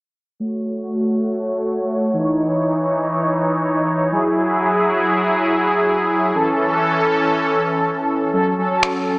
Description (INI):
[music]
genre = dance-pop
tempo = free time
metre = none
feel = none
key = unclear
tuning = A4 = 440 Hz
[part]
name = mellow synth brass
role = accompaniment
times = 0.4-9.2 s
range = E3 to C#5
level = -19 LUFS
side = equal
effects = chorus, low-pass filter
[part]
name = supersaw pad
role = sustained chords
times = 0.4-8.3 s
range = E3 to C#5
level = -19 LUFS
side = equal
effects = low-pass filter
[part]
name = electronic finger snaps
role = drums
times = 8.8-8.9 s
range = none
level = -22 LUFS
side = equal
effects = none
[sound]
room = moderate lush hall reverb, RT60 2.7 s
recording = small speaker sound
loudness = -16 LUFS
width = side -29 dB against mid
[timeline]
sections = 0.4-8.3 A section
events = filter sweep 0.4-8.3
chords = 0.4 F#m; 2.1 C#madd9; 4.1 Eadd9; 6.4 A; 8.3 F#m